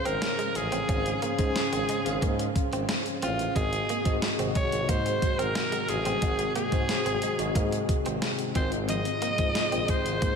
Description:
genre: 1980s-style pop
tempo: 90 BPM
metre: 4/4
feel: straight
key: Ab mixolydian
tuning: A4 = 440 Hz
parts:
  - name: raspy alto saxophone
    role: melody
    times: 0.0-10.4 s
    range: F4 to Eb5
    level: -30 LUFS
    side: equal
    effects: slapback echo, ping-pong delay
  - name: bell-like tine electric piano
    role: accompaniment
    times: 0.0-10.4 s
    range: Ab2 to Ab5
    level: -32 LUFS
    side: left 1 dB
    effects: fast stereo tremolo
  - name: soft string machine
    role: sustained chords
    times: 0.0-10.4 s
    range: C3 to Ab4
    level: -35 LUFS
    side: left 1 dB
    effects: ensemble chorus
  - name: direct-recorded clean electric guitar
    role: riff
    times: 0.1-10.3 s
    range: F3 to Db4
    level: -36 LUFS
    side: right 4 dB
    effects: wide subtle chorus, slapback echo, ping-pong delay
  - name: clear tuba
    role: bass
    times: 0.1-10.4 s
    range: Ab1 to Ab2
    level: -33 LUFS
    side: equal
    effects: none
  - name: clean 12-bit digital drum machine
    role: drums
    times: 0.1-10.4 s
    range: hi-hat, kick drum, snare drum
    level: -29 LUFS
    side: equal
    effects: none
room: wet lush hall reverb, RT60 1.8 s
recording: big arena sound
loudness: -25 LUFS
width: side -6 dB against mid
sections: 0.0-10.4 A section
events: none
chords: 0.0 Dbmaj7/Ab; 3.6 Ab7; 8.6 Fm7/Ab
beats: 0.22 | 0.89 1.55 2.22 2.89 | 3.55 4.22 4.89 5.55 | 6.22 6.89 7.55 8.22 | 8.89 9.55 10.22

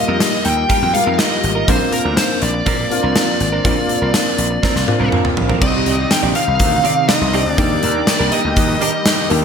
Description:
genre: 1980s-style pop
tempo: 122 BPM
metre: 4/4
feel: straight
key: Eb major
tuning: A4 = 441 Hz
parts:
  - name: fuzz lead guitar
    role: melody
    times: 0.0-9.3 s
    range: Bb4 to G5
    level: -20 LUFS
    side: equal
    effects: distortion
  - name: warm concert grand piano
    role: accompaniment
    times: 0.0-9.4 s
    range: G3 to G4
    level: -21 LUFS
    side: left 2 dB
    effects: analog chorus
  - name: direct-recorded clean electric guitar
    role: riff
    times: 0.1-9.4 s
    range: F3 to D5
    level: -25 LUFS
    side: right 5 dB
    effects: wide subtle chorus, ping-pong delay
  - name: gritty slap bass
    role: bass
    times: 0.1-9.4 s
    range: Ab1 to Bb2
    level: -20 LUFS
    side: equal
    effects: overdrive
  - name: gated 80s drum kit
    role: drums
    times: 0.2-9.4 s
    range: crash cymbal, hi-hat, kick drum, snare drum, toms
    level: -17 LUFS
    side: equal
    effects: gated reverb
  - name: lush unison pad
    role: sustained chords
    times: 6.1-9.4 s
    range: C3 to G4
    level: -23 LUFS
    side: right 1 dB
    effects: chorus, phaser
room: moderate plate reverb, RT60 0.9 s, studio reverb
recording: bright 1980s-style digital production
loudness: -13 LUFS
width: side -7 dB against mid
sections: 0.0-5.6 A section; 5.6-9.4 B section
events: drum fill 4.6-5.6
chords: 0.0 Ebadd9; 1.7 Bbadd9; 5.6 Cmadd9; 7.6 Ebmaj7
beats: 0.21 0.70 1.19 | 1.68 2.17 2.67 3.16 | 3.65 4.14 4.63 5.12 | 5.62 6.11 6.60 7.09 | 7.58 8.07 8.57 9.06

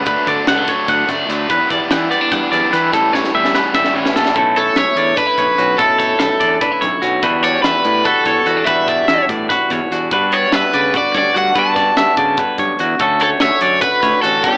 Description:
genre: math rock and midwest emo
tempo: 292 BPM (eighths)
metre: 7/8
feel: straight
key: unclear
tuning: A4 = 440 Hz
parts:
  - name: clean electric guitar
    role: accompaniment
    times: 0.0-14.6 s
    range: D2 to F#4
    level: -24 LUFS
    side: equal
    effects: none
  - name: twangy electric guitar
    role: arpeggios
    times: 0.0-14.6 s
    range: F#4 to F#5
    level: -19 LUFS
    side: equal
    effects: none
  - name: cranked stack guitar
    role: riff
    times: 0.0-4.4 s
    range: A2 to E4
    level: -23 LUFS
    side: equal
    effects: overdrive
  - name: fuzz fingered electric bass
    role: bass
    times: 0.0-14.6 s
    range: G1 to E3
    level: -26 LUFS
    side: equal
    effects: overdrive
  - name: crisp fusion drum kit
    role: drums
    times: 0.1-14.5 s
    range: hi-hat, kick drum, snare drum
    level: -26 LUFS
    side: equal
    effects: none
  - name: cranked stack guitar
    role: melody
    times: 4.6-14.6 s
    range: G4 to A5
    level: -18 LUFS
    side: equal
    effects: overdrive
room: moderate studio reverb, RT60 0.9 s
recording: AM radio sound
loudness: -15 LUFS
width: mono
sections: 0.0-4.4 A section; 4.4-14.6 B section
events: drum fill 3.1-4.4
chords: 0.1 Dmaj7; 1.5 Em9; 2.9 A9; 4.4 Bm11; 7.2 Em11; 10.1 Gmaj9; 13.0 Dmaj9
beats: | 0.07 0.27 0.48 0.68 0.89 1.09 1.29 | 1.50 1.70 1.91 2.11 2.32 2.52 2.73 | 2.93 3.13 3.34 3.54 3.75 3.95 4.16 | 4.36 4.57 4.77 4.98 5.18 5.39 5.59 | 5.80 6.00 6.21 6.41 6.62 6.83 7.03 | 7.24 7.44 7.65 7.85 8.06 8.27 8.47 | 8.68 8.88 9.09 9.29 9.50 9.71 9.91 | 10.12 10.32 10.53 10.74 10.94 11.15 11.35 | 11.56 11.77 11.97 12.18 12.38 12.59 12.79 | 13.00 13.21 13.41 13.62 13.82 14.03 14.23 | 14.44

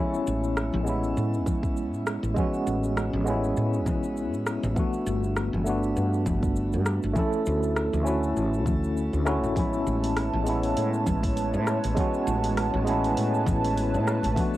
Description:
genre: sunset chillout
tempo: 100 BPM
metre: 4/4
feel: swing 56% on 16ths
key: A major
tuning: A4 = 440 Hz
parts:
  - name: tine electric piano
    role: accompaniment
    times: 0.0-14.6 s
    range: G#3 to A4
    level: -27 LUFS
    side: equal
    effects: medium stereo tremolo, auto-pan, cassette tape, analog delay, shimmer reverb
  - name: deep house drum kit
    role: drums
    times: 0.1-14.6 s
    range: hi-hat, rim click, shaker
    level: -34 LUFS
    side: equal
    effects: small room ambience
  - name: woody fretless electric bass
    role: bass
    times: 0.3-14.3 s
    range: G1 to A2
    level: -28 LUFS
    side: equal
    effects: lush chorus
  - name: congas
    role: percussion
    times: 0.7-14.5 s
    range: none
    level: -33 LUFS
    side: left 2 dB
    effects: none
  - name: electronic kick drum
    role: drums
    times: 1.5-14.5 s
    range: none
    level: -28 LUFS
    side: equal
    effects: small room ambience
  - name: airy breathy pad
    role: sustained chords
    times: 9.6-14.6 s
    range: G3 to A5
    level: -31 LUFS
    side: right 2 dB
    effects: chorus, cassette tape, shimmer reverb
room: wet small room reverb, RT60 0.5 s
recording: home recording on cassette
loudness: -23 LUFS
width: side -15 dB against mid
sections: 0.0-14.6 A section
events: none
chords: 0.0 Amaj9; 4.8 Gmaj9; 7.2 Dmaj9; 9.6 Amaj9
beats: 0.57 1.17 1.77 | 2.37 2.97 3.57 4.17 | 4.77 5.37 5.97 6.57 | 7.17 7.77 8.37 8.97 | 9.57 10.17 10.77 11.37 | 11.97 12.57 13.17 13.77 | 14.37

